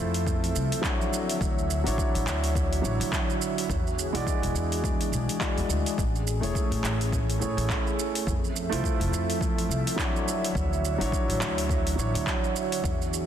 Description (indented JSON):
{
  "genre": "sunset chillout",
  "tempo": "105 BPM",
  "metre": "4/4",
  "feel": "swing 58% on 16ths",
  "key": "unclear",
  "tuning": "A4 = 441 Hz",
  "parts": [
    { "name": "dark baby grand piano", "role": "accompaniment", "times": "0.0-12.9 s", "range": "F#3 to D5", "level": "-31 LUFS", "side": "moving between left 4 dB and right 6 dB", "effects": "auto-pan, low-pass filter, ping-pong delay" },
    { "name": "airy breathy pad", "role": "sustained chords", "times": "0.0-13.3 s", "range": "D3 to E5", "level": "-32 LUFS", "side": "right 1 dB", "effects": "chorus" },
    { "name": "upright bass", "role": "bass", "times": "0.0-13.2 s", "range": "E1 to A2", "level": "-29 LUFS", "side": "equal", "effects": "none" },
    { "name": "deep house drum kit", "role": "drums", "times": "0.1-13.3 s", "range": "handclaps, hi-hat, shaker", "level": "-33 LUFS", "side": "right 1 dB", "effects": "overdrive, studio reverb" },
    { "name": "electronic kick drum", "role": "drums", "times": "0.3-13.0 s", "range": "none", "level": "-30 LUFS", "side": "equal", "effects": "overdrive, studio reverb" }
  ],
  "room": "light reverb, digital ambience",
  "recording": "dense, heavily limited modern master",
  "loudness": "-24 LUFS",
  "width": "side -9 dB against mid",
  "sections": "0.0-13.3 A section",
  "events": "none",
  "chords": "0.0 Fmaj7; 1.1 Dmaj9; 3.7 E9; 6.0 Amaj7; 8.3 Fmaj7; 10.3 Dmaj9"
}